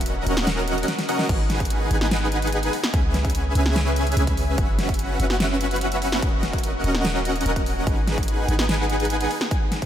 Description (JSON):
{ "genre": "future bass", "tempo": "146 BPM", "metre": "4/4", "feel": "half-time", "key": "G# minor", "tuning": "A4 = 439 Hz", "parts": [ { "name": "dense compressed supersaw", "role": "riff", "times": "0.0-9.3 s", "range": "C#4 to G#5", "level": "-24 LUFS", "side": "equal", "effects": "sidechain pumping, tape echo" }, { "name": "warm 808-style bass", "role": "bass", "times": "0.0-9.3 s", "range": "D#1 to C#2", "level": "-25 LUFS", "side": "equal", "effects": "sidechain pumping" }, { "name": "big-room dance drum kit", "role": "drums", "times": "0.0-9.9 s", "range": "crash cymbal, hi-hat, snare drum", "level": "-27 LUFS", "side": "equal", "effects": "none" }, { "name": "electronic kick drum", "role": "drums", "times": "1.3-9.9 s", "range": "none", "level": "-24 LUFS", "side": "equal", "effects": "none" } ], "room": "moderate huge ambient reverb, RT60 7.0 s", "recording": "dreamy mix soaked in reverb", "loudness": "-20 LUFS", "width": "side -10 dB against mid", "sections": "0.0-9.9 A section", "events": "drum fill 0.9-1.3", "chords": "0.0 D#m7; 1.3 G#m7; 2.7 C#m7; 4.6 F#7sus4; 6.2 D#m7; 7.9 G#m7; 9.3 N.C." }